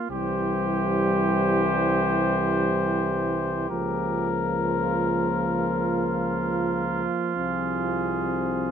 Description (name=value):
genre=classical, brass quintet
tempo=62-68 BPM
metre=4/4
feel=rubato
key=unclear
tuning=A4 = 440 Hz
part: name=clear flugelhorn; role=second line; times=0.0-8.7 s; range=F4 to G4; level=-29 LUFS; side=right 7 dB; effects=none
part: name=dark French horn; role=accompaniment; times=0.0-8.7 s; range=G3 to C4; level=-31 LUFS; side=left 4 dB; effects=none
part: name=mellow trumpet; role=melody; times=0.1-8.7 s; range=Ab4 to C5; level=-29 LUFS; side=left 9 dB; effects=none
part: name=mellow euphonium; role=accompaniment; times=0.1-8.7 s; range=E3 to F3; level=-29 LUFS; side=right 3 dB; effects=none
part: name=warm bass trombone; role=bass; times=0.1-8.7 s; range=C2 to Db2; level=-29 LUFS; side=right 2 dB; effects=none
room=light reverb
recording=close, detailed microphones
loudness=-22 LUFS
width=side -8 dB against mid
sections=0.0-8.7 A section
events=none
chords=0.1 C; 3.7 Bbm/Db; 7.4 Fm/C